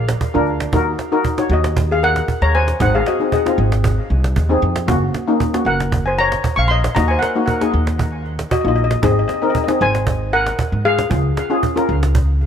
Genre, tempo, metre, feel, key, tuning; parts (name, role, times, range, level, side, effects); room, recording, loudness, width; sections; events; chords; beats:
calypso; 116 BPM; 4/4; straight; A4 = 438 Hz
steel pan; melody; 0.0-12.5 s; Gb4 to Db6; -19 LUFS; left 2 dB; tape echo
upright bass; bass; 0.0-12.5 s; Gb1 to Ab2; -18 LUFS; equal
cajon; drums; 0.1-12.5 s; -22 LUFS; right 3 dB
steel pan; accompaniment; 0.3-12.4 s; Bb3 to Db5; -20 LUFS; left 2 dB
light reverb; -15 LUFS; side -8 dB against mid
0.0-12.5 A section
0.0 Bb; 0.7 Ebm; 2.8 Ab; 4.9 Gb; 7.0 Ebm; 9.0 Ab; 11.1 Db
0.21 | 0.73 1.25 1.77 2.29 | 2.81 3.33 3.85 4.36 | 4.88 5.40 5.92 6.44 | 6.96 7.47 7.99 8.51 | 9.03 9.55 10.07 10.59 | 11.11 11.62 12.14